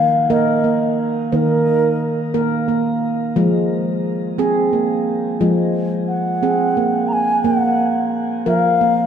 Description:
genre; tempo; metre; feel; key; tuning
world meditative; 59 BPM (dotted quarters); 6/8; straight; unclear; A4 = 440 Hz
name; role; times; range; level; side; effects
mellow bansuri; melody; 0.0-2.3, 6.1-9.1 s; Bb4 to Bb5; -19 LUFS; left 1 dB; shimmer reverb, tape echo
handpan; arpeggios; 0.3-9.1 s; Eb3 to Bb4; -17 LUFS; right 1 dB; shimmer reverb
room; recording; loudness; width
wet recital hall reverb, RT60 1.5 s, small room ambience; none; -15 LUFS; side -8 dB against mid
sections
0.0-9.1 A section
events
none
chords
0.0 Eb5; 3.4 Fm; 7.4 Bb5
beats
0.29 | 1.32 2.34 | 3.37 4.39 | 5.41 6.43 | 7.45 8.47

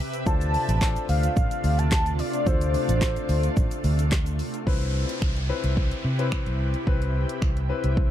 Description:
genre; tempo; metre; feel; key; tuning
dance-pop; 109 BPM; 4/4; straight; C major; A4 = 442 Hz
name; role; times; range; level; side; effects
shimmering ambient pad; sustained chords; 0.0-8.1 s; C3 to E5; -32 LUFS; right 1 dB; chorus, built-in reverb, sidechain pumping
deep house drum kit; drums; 0.1-8.1 s; finger snaps, handclaps, hi-hat, kick drum, shaker, snare drum; -25 LUFS; equal; none
tube shaker; percussion; 0.1-4.7 s; none; -49 LUFS; right 14 dB; none
warm velvety synth lead; melody; 0.3-4.1 s; C5 to A5; -29 LUFS; left 1 dB; chorus, ping-pong delay
clear baby grand piano; accompaniment; 0.3-8.1 s; C4 to C5; -32 LUFS; left 8 dB; sidechain pumping
vintage muted fingered electric bass; bass; 0.3-8.1 s; A1 to C3; -25 LUFS; equal; sidechain pumping
downlifter; sound effects; 4.7-8.1 s; none; -37 LUFS; equal; none
room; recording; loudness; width
digital ambience; dark, warm production; -22 LUFS; side -11 dB against mid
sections
0.0-4.7 A section; 4.7-8.1 B section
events
none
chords
0.3 Dm7; 4.7 Cmaj7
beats
| 0.27 0.81 1.37 1.92 | 2.47 3.02 3.57 4.12 | 4.67 5.22 5.77 6.32 | 6.87 7.42 7.97

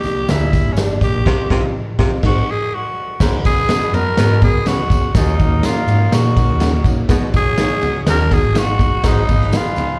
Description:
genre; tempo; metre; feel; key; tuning
uptempo 1960s-style soul; 123 BPM; 4/4; straight; Db mixolydian from 3.2 s; A4 = 440 Hz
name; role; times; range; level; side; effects
growling tenor saxophone; melody; 0.0-10.0 s; Db4 to Bb4; -23 LUFS; equal; none
warm concert grand piano; accompaniment; 0.0-9.9 s; Ab3 to Cb5; -27 LUFS; equal; none
hollow-body short-scale fingered electric bass; bass; 0.0-10.0 s; Gb1 to Bb2; -20 LUFS; equal; none
tambourine; percussion; 0.0-9.9 s; none; -39 LUFS; equal; none
raw garage drum kit; drums; 0.1-9.9 s; crash cymbal, hi-hat, kick drum, ride cymbal, snare drum; -20 LUFS; equal; none
warm baritone saxophone; riff; 0.3-9.2 s; Eb2 to C3; -26 LUFS; equal; slapback echo
mellow electric guitar; stabs; 0.8-9.6 s; Bb3 to C5; -29 LUFS; equal; lush chorus, slapback echo
dark horn section; second line; 3.2-10.0 s; Gb3 to Db5; -32 LUFS; equal; slapback echo
room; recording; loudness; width
small room ambience; live gig heard through the venue's PA, club reverb; -16 LUFS; mono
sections
0.0-3.2 A section; 3.2-10.0 B section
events
tenor saxophone solo 0.0-3.2; band accent 1.3-3.2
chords
0.0 Gm; 1.3 Csus4; 2.2 Ab7; 3.2 Db7sus4; 5.1 Ebm7; 7.1 Cb6; 9.0 Abm7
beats
0.28 0.77 | 1.26 1.74 2.23 2.72 | 3.20 3.69 4.18 4.66 | 5.15 5.63 6.12 6.61 | 7.09 7.58 8.07 8.55 | 9.04 9.53

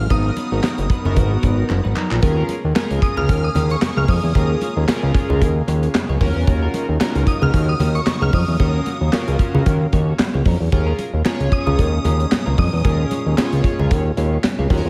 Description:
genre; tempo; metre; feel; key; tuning
early-eighties boogie funk; 113 BPM; 4/4; swing 56% on 16ths; unclear; A4 = 439 Hz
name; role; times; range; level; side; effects
shimmering bell with halo; melody; 0.0-13.1 s; Db6 to F6; -30 LUFS; equal; ensemble chorus, diffuse ambient delay
lush unison pad; sustained chords; 0.0-14.9 s; Bb2 to F5; -31 LUFS; equal; chorus
fat analog bass; bass; 0.0-14.9 s; Gb1 to F2; -20 LUFS; equal; none
chorused polysynth; accompaniment; 0.1-14.9 s; Cb4 to Db5; -29 LUFS; equal; none
clean electric guitar; riff; 0.1-14.9 s; Gb3 to Db5; -34 LUFS; equal; lush chorus
modern studio drum kit; drums; 0.1-14.8 s; handclaps, hi-hat, kick drum, snare drum; -22 LUFS; equal; none
congas; percussion; 0.1-14.8 s; none; -30 LUFS; equal; none
room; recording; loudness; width
moderate lush hall reverb, RT60 1.7 s, studio ambience; dreamy mix soaked in reverb; -18 LUFS; mono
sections
0.0-2.2 A section; 2.2-14.9 B section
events
drum fill 1.7-2.2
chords
0.1 Abm9; 2.2 Bbm7; 6.2 Ebm7; 10.7 Bbm7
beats
| 0.10 0.64 1.17 1.70 | 2.23 2.76 3.29 3.82 | 4.35 4.88 5.41 5.95 | 6.48 7.01 7.54 8.07 | 8.60 9.13 9.66 10.19 | 10.72 11.26 11.79 12.32 | 12.85 13.38 13.91 14.44

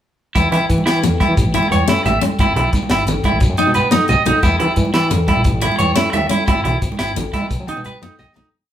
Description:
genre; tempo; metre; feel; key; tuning
highlife guitar band; 118 BPM (dotted quarters); 12/8; straight; E major; A4 = 441 Hz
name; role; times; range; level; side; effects
electric guitar at the edge of break-up; arpeggios; 0.4-8.5 s; D#4 to E5; -18 LUFS; right 3 dB; none
fat analog bass; bass; 0.4-8.4 s; G#1 to E3; -20 LUFS; equal; none
tight funk drum kit; drums; 0.4-8.4 s; hi-hat, kick drum, snare drum; -21 LUFS; equal; none
agogo bells; percussion; 0.4-8.4 s; none; -26 LUFS; left 6 dB; none
congas; percussion; 0.4-8.4 s; none; -23 LUFS; right 3 dB; none
shekere; percussion; 0.4-8.3 s; none; -27 LUFS; left 1 dB; none
picked steel-string acoustic guitar; accompaniment; 1.0-8.5 s; B3 to E4; -22 LUFS; left 6 dB; none
room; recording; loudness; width
moderate large studio reverb, RT60 1.0 s; band playing live in one room; -14 LUFS; side -10 dB against mid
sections
0.4-8.5 groove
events
fade-out 6.5-8.5; drum fill 8.0-8.5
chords
0.4 E5; 1.4 A; 2.4 E/G#; 3.4 B; 4.4 E5; 5.5 A; 6.5 E/G#; 7.5 B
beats
| 0.35 0.86 1.37 1.88 | 2.39 2.90 3.42 3.92 | 4.44 4.95 5.46 5.97 | 6.48 6.99 7.51 8.02

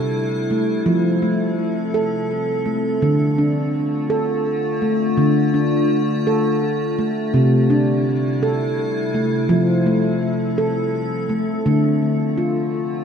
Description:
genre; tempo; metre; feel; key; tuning
world meditative, meditative tuned percussion; 83 BPM; 3/4; swing 54% on 16ths; D minor; A4 = 439 Hz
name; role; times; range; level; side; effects
icy glass pad; sustained chords; 0.0-13.0 s; C3 to A4; -22 LUFS; left 3 dB; chorus, built-in reverb
handpan; arpeggios; 0.0-13.0 s; C3 to A4; -18 LUFS; right 1 dB; ping-pong delay
room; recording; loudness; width
wet echo chamber reverb, RT60 1.6 s; none; -17 LUFS; side -7 dB against mid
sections
0.0-11.7 A section; 11.7-13.0 B section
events
none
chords
0.0 C; 0.9 F; 3.0 Dm; 7.3 C; 9.5 F; 11.7 Dm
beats
0.15 | 0.87 1.59 2.31 | 3.03 3.75 4.47 | 5.19 5.91 6.62 | 7.34 8.06 8.78 | 9.50 10.22 10.94 | 11.66 12.38

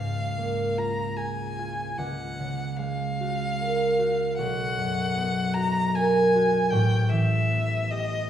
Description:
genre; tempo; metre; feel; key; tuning
classical, impressionist duo for violin and harp; 75 BPM; 3/4; rubato; unclear; A4 = 440 Hz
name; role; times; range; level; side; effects
rich violin; melody; 0.0-8.3 s; Eb5 to Bb5; -29 LUFS; equal; none
concert harp; accompaniment; 0.0-8.3 s; A1 to Bb4; -24 LUFS; equal; none
room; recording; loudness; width
wet recital hall reverb, RT60 1.5 s; heard from further back in the room; -23 LUFS; side -10 dB against mid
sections
0.0-8.3 A section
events
none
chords
0.0 Db6; 2.0 Gbmaj9/Db; 4.4 Cb5; 6.7 Asus2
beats
0.38 1.18 | 1.98 2.78 3.57 | 4.38 5.16 5.94 | 6.72 7.51

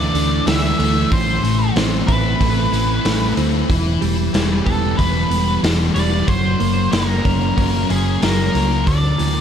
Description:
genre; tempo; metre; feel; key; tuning
rock, shoegaze and dream pop; 93 BPM; 4/4; straight; D mixolydian; A4 = 440 Hz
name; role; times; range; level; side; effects
octave-fuzz lead guitar; melody; 0.0-9.4 s; G#4 to E5; -23 LUFS; equal; distortion, tape echo
direct-recorded clean electric guitar; riff; 0.0-9.4 s; A2 to E4; -22 LUFS; right 12 dB; reverse reverb
thick fuzz guitar; riff; 0.0-9.4 s; A2 to E4; -22 LUFS; left 12 dB; distortion, analog chorus
hollow-body short-scale fingered electric bass; bass; 0.0-9.4 s; E1 to D2; -20 LUFS; equal; none
raw garage drum kit; drums; 0.1-9.3 s; hi-hat, kick drum, snare drum; -21 LUFS; equal; none
room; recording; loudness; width
small room ambience; none; -15 LUFS; side -8 dB against mid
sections
0.0-9.4 A section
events
none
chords
0.0 Dsus2; 1.1 Amadd9; 3.7 Em; 6.3 F#; 8.9 Dsus2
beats
0.47 | 1.11 1.76 2.40 3.05 | 3.70 4.34 4.99 5.63 | 6.28 6.93 7.57 8.22 | 8.86

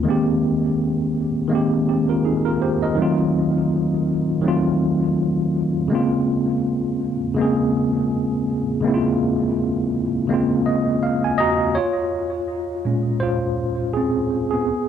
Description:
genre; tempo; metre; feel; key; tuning
hip hop; 82 BPM; 4/4; swing 56% on 16ths; Bb minor; A4 = 441 Hz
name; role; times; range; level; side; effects
tine electric piano; solo; 0.0-14.9 s; Bb2 to Bb5; -18 LUFS; equal; fast stereo tremolo, cassette tape, low-pass filter, analog delay
room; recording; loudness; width
wet small room reverb, RT60 0.6 s; none; -18 LUFS; side -8 dB against mid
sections
0.0-11.8 A section; 11.8-14.9 B section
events
tine electric piano fill 10.3-11.8; tine electric piano solo 11.8-14.9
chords
0.0 Abmaj9; 3.0 F7b9; 5.9 Bbm9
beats
| 0.05 0.78 1.51 2.24 | 2.98 3.71 4.44 5.17 | 5.90 6.63 7.37 8.10 | 8.83 9.56 10.29 11.02 | 11.76 12.49 13.22 13.95 | 14.68

